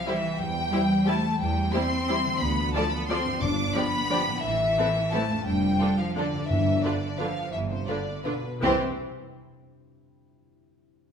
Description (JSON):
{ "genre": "classical", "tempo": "157-191 BPM", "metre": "3/4", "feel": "rubato", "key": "C major", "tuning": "A4 = 438 Hz", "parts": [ { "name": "warm symphonic violin section", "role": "melody", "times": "0.0-8.8 s", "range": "B4 to D6", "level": "-29 LUFS", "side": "left 2 dB", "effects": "none" }, { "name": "concert harp", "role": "arpeggios", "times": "0.0-8.8 s", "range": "F2 to G5", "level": "-33 LUFS", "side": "left 6 dB", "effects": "none" }, { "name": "rich symphonic cello section", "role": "bass", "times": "0.0-8.8 s", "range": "B2 to D4", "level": "-29 LUFS", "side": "right 2 dB", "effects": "none" }, { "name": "warm symphonic violin section", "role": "second line", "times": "0.1-8.8 s", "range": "E4 to D5", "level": "-32 LUFS", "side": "left 4 dB", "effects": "none" }, { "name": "rich symphonic viola section", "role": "accompaniment", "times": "0.1-8.8 s", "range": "D3 to F4", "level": "-32 LUFS", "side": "right 2 dB", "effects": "none" }, { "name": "rich symphonic double bass section", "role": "bass", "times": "0.4-8.8 s", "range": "F1 to E2", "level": "-32 LUFS", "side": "right 3 dB", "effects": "none" }, { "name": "timpani", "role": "percussion", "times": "3.4-3.9, 6.5-8.8 s", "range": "G2 to C3", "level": "-33 LUFS", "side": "equal", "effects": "none" } ], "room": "wet recital hall reverb, RT60 1.4 s", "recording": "minimal, uncompressed stereo recording", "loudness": "-23 LUFS", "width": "side -7 dB against mid", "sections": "0.0-8.6 A section; 8.6-9.7 B section", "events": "none", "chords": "0.4 C/E; 2.4 Dm; 3.4 G7; 4.4 Am; 5.5 Dm/F; 6.5 G7; 8.6 C" }